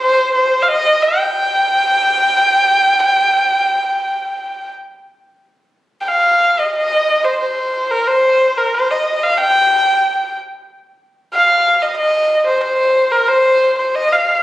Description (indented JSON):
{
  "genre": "chinese traditional",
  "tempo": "90 BPM",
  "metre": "4/4",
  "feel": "rubato",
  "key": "G jue mode",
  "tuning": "A4 = 440 Hz",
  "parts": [
    { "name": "dark erhu", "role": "solo", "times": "0.0-14.4 s", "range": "Bb4 to G5", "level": "-12 LUFS", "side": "equal", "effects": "none" }
  ],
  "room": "wet recital hall reverb, RT60 1.4 s",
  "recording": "recorded on a phone in the room, club reverb",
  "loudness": "-12 LUFS",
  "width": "side -15 dB against mid",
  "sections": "0.0-5.4 A section; 5.4-14.4 B section",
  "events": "none",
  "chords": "none",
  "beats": "| 0.02 0.68 1.34 2.00 | 2.67 3.34 4.01 4.70 | 5.38 6.05 6.73 7.39 | 8.06 8.72 9.38 10.04 | 10.70 11.36 12.01 12.67 | 13.33 13.99"
}